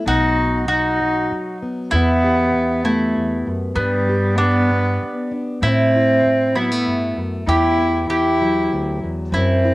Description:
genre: acoustic folk duo or small band.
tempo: 97 BPM.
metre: 3/4.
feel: straight.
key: unclear.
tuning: A4 = 440 Hz.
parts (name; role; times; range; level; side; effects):
fingerpicked plugged-in steel-string acoustic guitar; accompaniment; 0.0-9.7 s; D2 to G4; -24 LUFS; left 1 dB; cassette tape.
warm cello; melody; 0.1-9.7 s; G3 to E4; -19 LUFS; equal; cassette tape.
mandolin; second line; 0.1-9.7 s; B3 to G4; -22 LUFS; right 1 dB; cassette tape.
upright bass; bass; 0.1-9.7 s; B1 to A2; -23 LUFS; equal; none.
room: moderate studio reverb, RT60 0.6 s.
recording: home recording on cassette.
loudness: -16 LUFS.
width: side -18 dB against mid.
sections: 0.0-9.7 A section.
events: none.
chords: 0.1 B; 1.9 Em; 3.8 G; 5.6 Amadd9; 7.5 Emadd9.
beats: | 0.06 0.68 1.30 | 1.92 2.54 3.15 | 3.77 4.39 5.01 | 5.62 6.24 6.86 | 7.48 8.09 8.71 | 9.33.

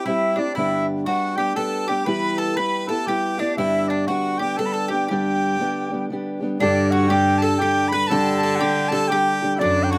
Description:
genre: celtic folk, Celtic waltz.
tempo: 119 BPM.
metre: 3/4.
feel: swing 62% on 8ths.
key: G major.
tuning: A4 = 440 Hz.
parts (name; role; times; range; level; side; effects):
bright reedy wooden flute; melody; 0.0-10.0 s; D5 to B5; -26 LUFS; equal; none.
mandolin; second line; 0.0-10.0 s; D4 to B4; -32 LUFS; equal; none.
warm harmonica; second line; 0.0-10.0 s; D4 to B4; -31 LUFS; equal; none.
fingerpicked old ladder-braced acoustic guitar; accompaniment; 0.0-10.0 s; G2 to A4; -26 LUFS; equal; none.
rich cello; bass; 6.6-10.0 s; F#2 to D3; -26 LUFS; equal; none.
room: light reverb.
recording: close, detailed microphones.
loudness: -21 LUFS.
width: mono.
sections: 0.0-6.6 A section; 6.6-10.0 B section.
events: none.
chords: 0.0 C; 0.6 G; 2.1 Em; 3.6 G; 6.6 Gsus2.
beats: 0.06 | 0.57 1.07 1.57 | 2.07 2.58 3.08 | 3.58 4.09 4.59 | 5.09 5.59 6.10 | 6.60 7.10 7.60 | 8.10 8.61 9.11 | 9.61.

